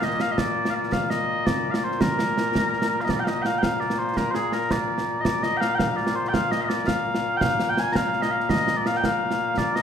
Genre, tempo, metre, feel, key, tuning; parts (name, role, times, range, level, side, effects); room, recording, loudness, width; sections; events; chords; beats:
scottish traditional, Scottish pipe music; 111 BPM (dotted quarters); 6/8; straight; Bb major; A4 = 440 Hz
mellow small bagpipes; melody; 0.0-9.8 s; Bb2 to Bb5; -23 LUFS; left 1 dB
concert snare drum and concert bass drum; drums; 0.0-9.8 s; -26 LUFS; right 1 dB
wet recital hall reverb, RT60 1.8 s; recorded in a church or concert hall; -21 LUFS; side -8 dB against mid
0.0-3.1 A section; 3.1-9.8 B section
0.39 | 0.93 1.47 | 2.01 2.55 | 3.09 3.63 | 4.17 4.71 | 5.25 5.79 | 6.33 6.87 | 7.41 7.95 | 8.49 9.03 | 9.57